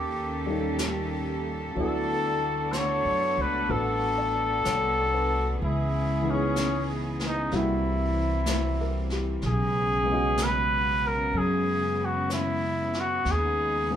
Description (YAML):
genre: jazz ballad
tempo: 63 BPM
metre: 4/4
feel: swing 68% on 8ths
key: unclear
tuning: A4 = 440 Hz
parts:
  - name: warm trumpet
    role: melody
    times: 0.0-14.0 s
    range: C#4 to C#5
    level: -27 LUFS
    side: left 1 dB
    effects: none
  - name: warm chamber cello section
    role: sustained chords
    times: 0.0-14.0 s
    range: C#3 to A4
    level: -32 LUFS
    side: equal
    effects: none
  - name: upright bass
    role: bass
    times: 0.0-14.0 s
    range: A1 to F#2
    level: -30 LUFS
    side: equal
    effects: none
  - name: warm baby grand piano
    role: accompaniment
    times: 0.5-14.0 s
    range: E3 to D#5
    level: -33 LUFS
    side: left 1 dB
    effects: none
  - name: jazz brush drum kit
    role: drums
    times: 0.8-14.0 s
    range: brushed snare drum, hi-hat, snare drum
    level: -36 LUFS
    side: left 1 dB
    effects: none
room: moderate large studio reverb, RT60 0.8 s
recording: band playing live in one room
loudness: -24 LUFS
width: side -9 dB against mid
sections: 0.0-14.0 A section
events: none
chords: 0.0 D#7#11; 1.8 D6; 5.6 C#m7; 7.5 C7#11; 9.4 B69